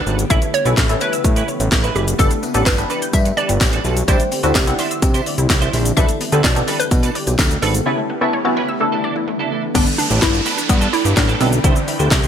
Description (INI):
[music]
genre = dance-pop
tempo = 127 BPM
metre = 4/4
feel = straight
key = G major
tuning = A4 = 440 Hz
[part]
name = hollow square pluck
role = melody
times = 0.0-12.3 s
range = B3 to E5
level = -23 LUFS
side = left 1 dB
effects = chorus, digital delay
[part]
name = shimmering ambient pad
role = sustained chords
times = 0.0-12.3 s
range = C#3 to G5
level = -27 LUFS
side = equal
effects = chorus, built-in reverb, sidechain pumping
[part]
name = twelve-string electric guitar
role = riff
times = 0.0-12.3 s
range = B3 to C5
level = -26 LUFS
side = right 7 dB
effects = ensemble chorus
[part]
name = fat analog bass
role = bass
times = 0.1-12.3 s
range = F#1 to C3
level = -19 LUFS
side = equal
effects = sidechain pumping
[part]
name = house drum kit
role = drums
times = 0.1-12.3 s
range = crash cymbal, handclaps, hi-hat, kick drum, shaker, snare drum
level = -18 LUFS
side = equal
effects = gated reverb
[part]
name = wavetable chord stab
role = accompaniment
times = 0.3-12.3 s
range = D3 to F#5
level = -22 LUFS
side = left 1 dB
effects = lush chorus, sidechain pumping
[part]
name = wide unison pluck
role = arpeggios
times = 0.3-12.3 s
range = C#3 to G6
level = -28 LUFS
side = left 2 dB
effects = sidechain pumping, digital delay
[part]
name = tambourine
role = percussion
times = 2.2-7.9 s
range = none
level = -34 LUFS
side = left 10 dB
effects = none
[part]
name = swell and downlifter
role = sound effects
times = 8.1-12.3 s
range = none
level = -25 LUFS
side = right 2 dB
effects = none
[sound]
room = light reverb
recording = bright 1980s-style digital production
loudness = -14 LUFS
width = side -8 dB against mid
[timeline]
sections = 0.0-9.8 A section; 9.8-12.3 B section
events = break 7.9-9.8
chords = 0.3 Aadd9; 2.2 Gadd9; 4.1 Cadd9; 6.0 Gadd9/B; 7.9 Aadd9; 8.8 Dsus2; 9.8 Gadd9; 11.6 Cadd9